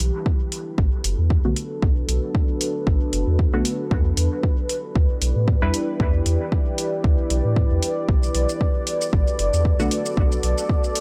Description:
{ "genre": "dub techno", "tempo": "115 BPM", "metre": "4/4", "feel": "swing 56% on 16ths", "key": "B minor", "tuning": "A4 = 440 Hz", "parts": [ { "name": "deep dark ambient pad", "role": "sustained chords", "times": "0.0-11.0 s", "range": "D4 to D5", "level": "-29 LUFS", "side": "equal", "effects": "chorus, built-in reverb, sidechain pumping" }, { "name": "warm sub bass", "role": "bass", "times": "0.0-10.5 s", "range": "F#1 to A2", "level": "-24 LUFS", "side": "equal", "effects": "tube saturation, sidechain pumping" }, { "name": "electronic hi-hat and shaker", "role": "drums", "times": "0.0-11.0 s", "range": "none", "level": "-30 LUFS", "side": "equal", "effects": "studio ambience" }, { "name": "electronic kick drum", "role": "drums", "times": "0.3-10.8 s", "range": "none", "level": "-23 LUFS", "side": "equal", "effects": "overdrive, studio ambience" }, { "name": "filtered dub chord stab", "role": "stabs", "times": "1.4-11.0 s", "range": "D3 to B4", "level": "-31 LUFS", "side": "equal", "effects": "chorus, phaser, sidechain pumping, dub echo" } ], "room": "digital ambience", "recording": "dry, gritty hardware recording", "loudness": "-21 LUFS", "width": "mono", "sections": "0.0-11.0 A section", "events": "none", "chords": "0.0 Bm7; 3.9 Em7; 8.1 Bm7", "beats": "0.26 0.78 1.30 | 1.82 2.35 2.87 3.39 | 3.91 4.43 4.96 5.48 | 6.00 6.52 7.04 7.56 | 8.09 8.61 9.13 9.65 | 10.17 10.70" }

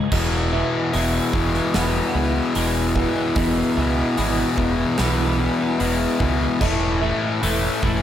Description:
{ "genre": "post-rock", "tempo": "74 BPM", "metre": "4/4", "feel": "straight", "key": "E major", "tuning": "A4 = 440 Hz", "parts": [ { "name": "soft additive organ-like pad", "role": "sustained chords", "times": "0.0-8.0 s", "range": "E4 to G#5", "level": "-31 LUFS", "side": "right 4 dB", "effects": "ensemble chorus, built-in reverb" }, { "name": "felt-muted upright piano", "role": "arpeggios", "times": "0.0-7.8 s", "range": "B4 to E5", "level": "-33 LUFS", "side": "right 7 dB", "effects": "lush chorus, diffuse ambient delay" }, { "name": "twelve-string electric guitar", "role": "arpeggios", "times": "0.0-8.0 s", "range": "E2 to E4", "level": "-29 LUFS", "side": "right 2 dB", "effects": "ensemble chorus, diffuse ambient delay" }, { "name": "fuzz guitar", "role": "riff", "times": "0.0-8.0 s", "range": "E2 to A3", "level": "-21 LUFS", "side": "left 4 dB", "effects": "distortion" }, { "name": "fingered electric bass", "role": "bass", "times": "0.1-8.0 s", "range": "E1 to C#2", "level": "-24 LUFS", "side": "right 1 dB", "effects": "none" }, { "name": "huge arena drum kit", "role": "drums", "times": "0.1-8.0 s", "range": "crash cymbal, hi-hat, kick drum, snare drum", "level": "-28 LUFS", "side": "right 2 dB", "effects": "none" } ], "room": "wet plate reverb, RT60 2.0 s", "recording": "dreamy mix soaked in reverb", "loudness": "-18 LUFS", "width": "side -10 dB against mid", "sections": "0.1-8.0 A section", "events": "none", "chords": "0.1 Emaj7; 6.6 Amaj7/E", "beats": "| 0.12 0.93 1.74 2.56 | 3.37 4.18 4.99 5.80 | 6.62 7.43" }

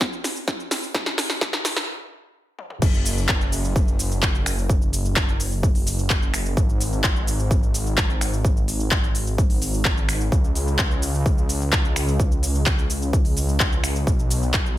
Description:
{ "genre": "EDM, festival progressive house", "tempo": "128 BPM", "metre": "4/4", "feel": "straight", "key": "unclear", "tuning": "A4 = 441 Hz", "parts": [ { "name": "big-room dance drum kit", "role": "drums", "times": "0.0-14.8 s", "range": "crash cymbal, finger snaps, handclaps, hi-hat, shaker, snare drum, toms", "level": "-24 LUFS", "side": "equal", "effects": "none" }, { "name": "electronic kick drum", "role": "drums", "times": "0.0-14.6 s", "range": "none", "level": "-21 LUFS", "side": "equal", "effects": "none" }, { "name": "wide detuned saw bass", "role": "bass", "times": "2.8-14.8 s", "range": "F#1 to C#2", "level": "-24 LUFS", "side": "equal", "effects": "chorus, sidechain pumping" } ], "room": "little or no reverb", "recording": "high-pass filter", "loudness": "-19 LUFS", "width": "side -14 dB against mid", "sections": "0.0-2.8 A section; 2.8-14.8 B section", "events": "build-up 0.0-2.8; drum fill 0.0-1.9, 2.6; filter sweep 0.0-2.8; stop 1.9-2.8; drop 2.8-14.8", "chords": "none", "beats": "0.01 0.48 | 0.95 1.41 1.88 2.35 | 2.82 3.29 3.76 4.23 | 4.70 5.16 5.63 6.10 | 6.57 7.04 7.51 7.98 | 8.45 8.91 9.38 9.85 | 10.32 10.79 11.26 11.73 | 12.20 12.66 13.13 13.60 | 14.07 14.54" }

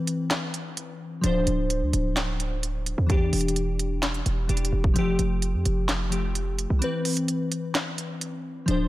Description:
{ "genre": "hip hop, trap", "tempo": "129 BPM", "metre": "4/4", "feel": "half-time", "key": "C major", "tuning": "A4 = 440 Hz", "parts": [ { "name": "glassy digital keys", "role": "accompaniment", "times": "0.0-8.9 s", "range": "E3 to C5", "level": "-27 LUFS", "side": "left 2 dB", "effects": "chorus" }, { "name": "trap drum kit", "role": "drums", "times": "0.1-8.8 s", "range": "handclaps, hi-hat, kick drum, snare drum", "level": "-28 LUFS", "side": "right 1 dB", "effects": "none" }, { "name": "hard-hitting 808-style bass", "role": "bass", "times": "1.2-8.9 s", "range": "D1 to F2", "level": "-26 LUFS", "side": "right 1 dB", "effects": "none" } ], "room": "little or no reverb", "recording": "none", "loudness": "-23 LUFS", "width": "side -16 dB against mid", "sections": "0.0-8.9 A section", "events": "break 0.0-1.2, 6.8-8.7", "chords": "0.0 Cmaj7; 1.2 Dm7; 3.1 Em7; 5.0 Fadd9; 6.8 Cmaj7", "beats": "0.31 0.77 | 1.24 1.70 2.17 2.63 | 3.10 3.56 4.03 4.49 | 4.96 5.42 5.89 6.35 | 6.82 7.28 7.75 8.21 | 8.68" }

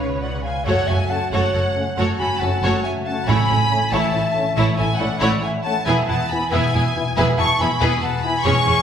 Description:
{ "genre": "cinematic, heroic adventure film score", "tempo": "92 BPM (dotted quarters)", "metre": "12/8", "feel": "straight", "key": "unclear", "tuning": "A4 = 440 Hz", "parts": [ { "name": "warm symphonic violin section", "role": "melody", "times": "0.0-8.8 s", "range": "F#5 to C#6", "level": "-24 LUFS", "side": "left 3 dB", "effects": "none" }, { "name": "silver concert flute", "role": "second line", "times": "0.0-8.8 s", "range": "C#5 to A5", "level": "-24 LUFS", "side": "equal", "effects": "none" }, { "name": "warm symphonic violin section", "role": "second line", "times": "0.0-8.8 s", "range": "A3 to C#5", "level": "-26 LUFS", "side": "left 2 dB", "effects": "none" }, { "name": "rich symphonic viola section", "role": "accompaniment", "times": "0.0-8.8 s", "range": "G#3 to B4", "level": "-26 LUFS", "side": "right 2 dB", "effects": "none" }, { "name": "concert harp", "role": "arpeggios", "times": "0.0-8.8 s", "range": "E2 to B4", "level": "-28 LUFS", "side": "left 4 dB", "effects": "none" }, { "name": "warm symphonic cello section", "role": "bass", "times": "0.0-8.8 s", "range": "E2 to C#3", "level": "-27 LUFS", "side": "right 2 dB", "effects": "none" }, { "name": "warm symphonic double bass section", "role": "bass", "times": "0.0-8.7 s", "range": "E1 to C#2", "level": "-26 LUFS", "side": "right 2 dB", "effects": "none" }, { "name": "mellow French horn section", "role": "sustained chords", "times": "1.1-8.3 s", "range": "A3 to E4", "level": "-31 LUFS", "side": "left 2 dB", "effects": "none" }, { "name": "timpani", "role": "percussion", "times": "3.3-3.9 s", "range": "A2", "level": "-23 LUFS", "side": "right 5 dB", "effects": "none" } ], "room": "wet recital hall reverb, RT60 1.6 s", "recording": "recorded in a church or concert hall", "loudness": "-17 LUFS", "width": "side -8 dB against mid", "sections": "0.7-8.8 A section", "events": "none", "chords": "0.0 C#7; 0.7 F#m; 3.3 A; 5.9 E", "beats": "| 0.67 1.32 1.98 2.63 | 3.27 3.92 4.57 5.22 | 5.87 6.52 7.17 7.82 | 8.46" }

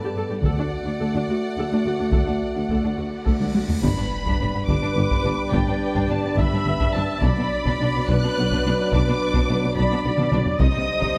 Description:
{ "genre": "cinematic, epic orchestral film score", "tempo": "71 BPM (dotted quarters)", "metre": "6/8", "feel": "straight", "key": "G major", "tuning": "A4 = 441 Hz", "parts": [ { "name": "rich symphonic violin section", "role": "melody", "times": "0.0-11.2 s", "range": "F#5 to F#6", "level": "-33 LUFS", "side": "equal", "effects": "none" }, { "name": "rich symphonic violin section", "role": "second line", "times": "0.0-11.2 s", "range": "B3 to D5", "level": "-35 LUFS", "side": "equal", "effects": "none" }, { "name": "rich symphonic viola section", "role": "accompaniment", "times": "0.0-11.2 s", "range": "D4 to E5", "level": "-31 LUFS", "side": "equal", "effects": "none" }, { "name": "mellow French horn section", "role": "sustained chords", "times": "0.0-11.2 s", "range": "D3 to A4", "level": "-30 LUFS", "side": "equal", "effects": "none" }, { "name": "rich symphonic cello section", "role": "bass", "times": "0.0-11.1 s", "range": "D2 to C3", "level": "-29 LUFS", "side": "equal", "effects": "none" }, { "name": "dark symphonic double bass section", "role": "bass", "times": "0.4-10.7 s", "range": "G1 to D2", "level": "-30 LUFS", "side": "equal", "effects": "none" }, { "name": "taiko ensemble", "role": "drums", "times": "0.4-11.2 s", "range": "none", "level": "-27 LUFS", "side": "equal", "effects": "none" }, { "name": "cymbal swell and impact", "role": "sound effects", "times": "3.3-5.5 s", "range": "none", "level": "-36 LUFS", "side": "equal", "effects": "none" }, { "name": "dark tuba", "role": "bass", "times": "3.8-10.7 s", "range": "G1 to C2", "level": "-31 LUFS", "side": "equal", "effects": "none" } ], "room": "moderate scoring stage reverb, RT60 1.8 s", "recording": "none", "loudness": "-22 LUFS", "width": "mono", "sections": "0.0-3.8 A section; 3.8-11.2 B section", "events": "cymbal swell 3.3-3.8; drum fill 3.4-3.8, 10.2-10.6; impact 3.8-5.5", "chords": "0.4 D; 3.8 G; 7.2 Bm; 10.6 Cmadd9", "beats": "| 0.44 1.28 | 2.13 2.99 | 3.84 4.69 | 5.54 6.38 | 7.23 8.09 | 8.93 9.77 | 10.61" }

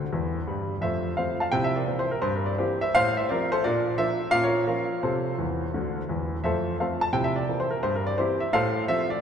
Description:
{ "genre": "jazz, stride piano", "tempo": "171 BPM", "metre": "4/4", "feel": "swing 64% on 8ths", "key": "F major", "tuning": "A4 = 440 Hz", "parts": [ { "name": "clear concert grand piano", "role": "solo", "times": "0.0-9.2 s", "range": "D2 to A5", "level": "-23 LUFS", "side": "equal", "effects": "none" } ], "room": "wet cathedral reverb, RT60 4.3 s", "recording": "recorded in a church or concert hall", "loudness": "-23 LUFS", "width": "side -7 dB against mid", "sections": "0.0-6.4 A section; 6.4-9.2 A section", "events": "grand piano fill 0.0-0.8, 5.4-6.4", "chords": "0.1 C; 0.8 F; 1.5 C7; 2.2 C7/G; 2.9 F/A; 3.6 Bb; 4.3 Bbm; 5.0 Am; 5.7 C; 6.4 F; 7.1 C7; 7.8 C7/G; 8.5 F/A", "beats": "0.13 0.48 | 0.83 1.18 1.53 1.88 | 2.23 2.58 2.93 3.28 | 3.63 3.98 4.33 4.69 | 5.04 5.39 5.74 6.09 | 6.44 6.79 7.14 7.49 | 7.84 8.19 8.54 8.89" }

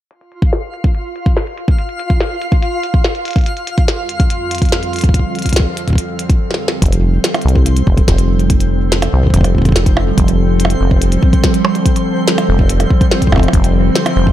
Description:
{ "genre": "IDM", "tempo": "143 BPM", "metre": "4/4", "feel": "straight", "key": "F major", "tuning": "A4 = 441 Hz", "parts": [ { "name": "glitchy drum kit", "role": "drums", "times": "0.1-14.1 s", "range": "hi-hat, percussion blips, snare drum", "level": "-19 LUFS", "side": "equal", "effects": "low-pass filter on hats, low-pass filter on snare, low-pass filter on perc, analog delay" }, { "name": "twinkling granular texture", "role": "texture", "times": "0.4-14.3 s", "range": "C4 to F5", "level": "-23 LUFS", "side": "right 1 dB", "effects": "built-in reverb" }, { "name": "electronic kick drum", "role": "drums", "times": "0.4-14.3 s", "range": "none", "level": "-12 LUFS", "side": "equal", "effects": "none" }, { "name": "warbly tape-like pad", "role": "sustained chords", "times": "4.2-14.3 s", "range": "F2 to A4", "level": "-18 LUFS", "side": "right 1 dB", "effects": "chorus, built-in reverb, phaser, sidechain pumping" }, { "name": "deep acid bass", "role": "bass", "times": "6.8-14.3 s", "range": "F1 to C2", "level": "-13 LUFS", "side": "equal", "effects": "none" } ], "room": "light reverb, digital ambience", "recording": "echo-heavy mix", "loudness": "-11 LUFS", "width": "side -12 dB against mid", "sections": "0.1-6.8 A section; 6.8-14.3 B section", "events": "filter sweep on drum 0.1-6.8; break 6.4-6.8; drum fill 6.4-6.8", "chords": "0.1 N.C.; 3.5 F69", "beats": "| 0.11 0.53 0.95 1.37 | 1.79 2.21 2.62 3.04 | 3.46 3.88 4.30 4.72 | 5.14 5.56 5.98 6.40 | 6.82 7.24 7.66 8.08 | 8.50 8.92 9.34 9.76 | 10.18 10.60 11.02 11.44 | 11.86 12.28 12.70 13.12 | 13.53 13.95" }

